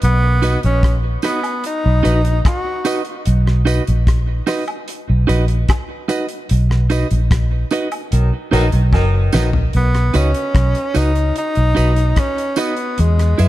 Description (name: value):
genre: roots reggae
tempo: 74 BPM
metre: 4/4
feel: straight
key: B major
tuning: A4 = 440 Hz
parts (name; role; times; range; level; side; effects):
- bright tenor saxophone; melody; 0.0-3.0, 9.8-13.5 s; G#3 to F#4; -20 LUFS; equal; tape echo
- vintage muted fingered electric bass; bass; 0.0-13.5 s; F#1 to F#2; -14 LUFS; equal; none
- damped 70s drum kit; drums; 0.0-13.5 s; hi-hat, kick drum, rim click, snare drum, toms; -19 LUFS; equal; none
- clean electric guitar; accompaniment; 0.4-13.5 s; D#4 to E5; -23 LUFS; right 3 dB; tape echo
- tambourine and woodblock; percussion; 0.4-13.5 s; none; -32 LUFS; right 2 dB; none
- mellow horn section; second line; 8.1-9.5 s; B2 to D#4; -23 LUFS; equal; tape echo
room: little or no reverb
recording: dark, warm production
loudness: -14 LUFS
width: side -15 dB against mid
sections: 0.0-9.7 A section; 9.7-13.5 B section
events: band accent 6.5-9.7; drum fill 8.9-9.7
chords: 0.0 B; 13.0 E